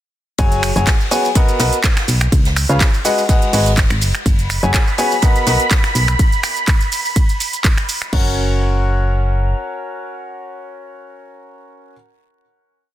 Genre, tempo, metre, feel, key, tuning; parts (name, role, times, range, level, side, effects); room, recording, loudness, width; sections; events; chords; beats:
piano house; 124 BPM; 4/4; swing 54% on 16ths; F# major; A4 = 440 Hz
clear upright piano; riff; 0.4-11.9 s; C#3 to G#5; -20 LUFS; left 1 dB; sidechain pumping, tape echo
solid FM bass; bass; 0.4-9.5 s; F#1 to C#2; -17 LUFS; equal; tube saturation, sidechain pumping
electronic kick drum; drums; 0.4-8.2 s; -14 LUFS; equal
house drum kit; drums; 0.4-8.2 s; crash cymbal, finger snaps, handclaps, hi-hat, ride cymbal, shaker; -21 LUFS; right 2 dB; soft clipping on snare
unplugged drum kit; drums; 0.4-6.1 s; hi-hat, ride cymbal, snare drum; -28 LUFS; left 2 dB; high-pass filter on cymbals, high-pass filter on hats, high-pass filter on snare, high-pass filter on room
analog string pad; sustained chords; 4.3-8.1 s; B5; -22 LUFS; right 2 dB; ensemble chorus, sidechain pumping
small room ambience; dense, heavily limited modern master; -13 LUFS; side -13 dB against mid
0.4-8.1 drop; 8.1-12.0 final chord
drop 0.4-8.1
0.4 F#sus2; 1.4 Bmaj7; 2.3 C#7; 3.0 G#m7; 4.3 F#sus2; 5.2 Bmaj7; 6.2 N.C.; 8.1 F#
| 0.39 0.87 1.35 1.84 | 2.32 2.81 3.29 3.77 | 4.26 4.74 5.22 5.71 | 6.19 6.68 7.16 7.64 | 8.13 8.61 9.10 9.58 | 10.06 10.55 11.03 11.52